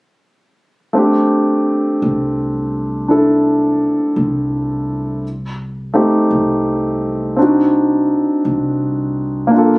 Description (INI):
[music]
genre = jazz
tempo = 56 BPM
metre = 4/4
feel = swing 66% on 8ths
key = unclear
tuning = A4 = 440 Hz
[part]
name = warm concert grand piano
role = accompaniment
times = 0.9-9.8 s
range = A3 to A4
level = -13 LUFS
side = equal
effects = none
[part]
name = upright bass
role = bass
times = 2.0-9.8 s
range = C2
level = -24 LUFS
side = equal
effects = none
[sound]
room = light reverb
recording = recorded on a phone in the room, club ambience, compression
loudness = -13 LUFS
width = side -25 dB against mid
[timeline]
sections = 0.9-9.8 A section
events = none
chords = 0.9 C69; 5.2 Am7b5; 7.4 D7b9/C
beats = | 0.94 2.01 3.08 4.16 | 5.23 6.30 7.37 8.44 | 9.51